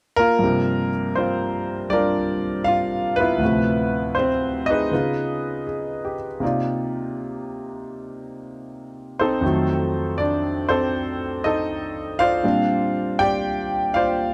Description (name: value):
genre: solo jazz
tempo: 80 BPM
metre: 4/4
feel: swing 68% on 8ths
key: G minor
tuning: A4 = 440 Hz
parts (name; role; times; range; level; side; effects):
- warm concert grand piano; solo; 0.2-14.3 s; D2 to G5; -23 LUFS; equal; none
room: light reverb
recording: close, detailed microphones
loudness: -22 LUFS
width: mono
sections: 0.4-14.3 A section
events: none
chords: 0.4 Gm7; 3.4 Dm9; 4.9 C#9; 6.4 Cm11; 9.4 F7b9; 12.4 Bb69